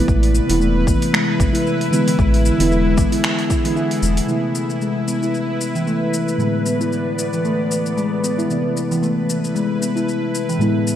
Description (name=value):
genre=organic downtempo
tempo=114 BPM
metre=4/4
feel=swing 56% on 16ths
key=A harmonic minor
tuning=A4 = 440 Hz
part: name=muted felt-like synth keys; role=accompaniment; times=0.0-11.0 s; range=A2 to E4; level=-22 LUFS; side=equal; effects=chorus, sidechain pumping, digital delay
part: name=bowed-like drone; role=sustained chords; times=0.0-11.0 s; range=A2 to D5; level=-24 LUFS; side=equal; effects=built-in reverb, sidechain pumping
part: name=steel tongue drum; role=arpeggios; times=0.0-11.0 s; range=E3 to E4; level=-21 LUFS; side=left 2 dB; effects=low-pass filter, digital delay
part: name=warm sub bass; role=bass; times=0.1-4.2 s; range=E1 to A1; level=-18 LUFS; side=equal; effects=sidechain pumping
part: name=deep house drum kit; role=drums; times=0.1-11.0 s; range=finger snaps, hi-hat, shaker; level=-26 LUFS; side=equal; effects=overdrive, studio ambience, gated reverb
part: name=electronic kick drum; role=drums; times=0.1-3.6 s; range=none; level=-19 LUFS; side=equal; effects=overdrive, studio ambience
room=moderate plate reverb, RT60 2.6 s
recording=bright 1980s-style digital production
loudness=-16 LUFS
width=side -10 dB against mid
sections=0.0-4.3 A section; 4.3-11.0 B section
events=filter sweep on steel tongue drum 4.3-11.0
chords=0.0 Amadd9; 2.2 E7; 4.3 Amadd9; 6.4 Asus24; 8.5 Amadd9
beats=| 0.08 0.61 1.13 1.66 | 2.19 2.71 3.24 3.77 | 4.29 4.82 5.34 5.87 | 6.40 6.92 7.45 7.98 | 8.50 9.03 9.55 10.08 | 10.61